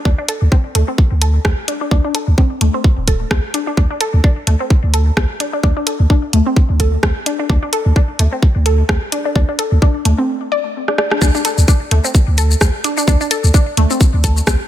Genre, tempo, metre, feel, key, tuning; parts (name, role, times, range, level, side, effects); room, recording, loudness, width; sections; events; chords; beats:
minimal techno; 129 BPM; 4/4; swing 56% on 16ths; A4 = 444 Hz
resonant blip pluck; riff; 0.1-14.3 s; A3 to D5; -20 LUFS; left 1 dB; phaser, sidechain pumping, ping-pong delay
punchy sub bass; bass; 0.1-14.6 s; D1 to D2; -13 LUFS; equal; sidechain pumping
electronic kick drum; drums; 0.1-14.6 s; -12 LUFS; equal; small room ambience
garage drum kit; drums; 0.3-14.6 s; hi-hat, rim click, shaker; -19 LUFS; equal; small room ambience
digital ambience; -12 LUFS; side -12 dB against mid
0.0-11.2 A section; 11.2-14.7 B section
break 10.3-11.2; drum fill 10.9-11.2; band accent 11.1; drop 11.2-14.7
0.0 D5
| 0.05 0.52 0.98 1.45 | 1.91 2.38 2.84 3.31 | 3.77 4.24 4.70 5.17 | 5.63 6.10 6.57 7.03 | 7.50 7.96 8.43 8.89 | 9.36 9.82 10.29 10.75 | 11.22 11.68 12.15 12.61 | 13.08 13.54 14.01 14.47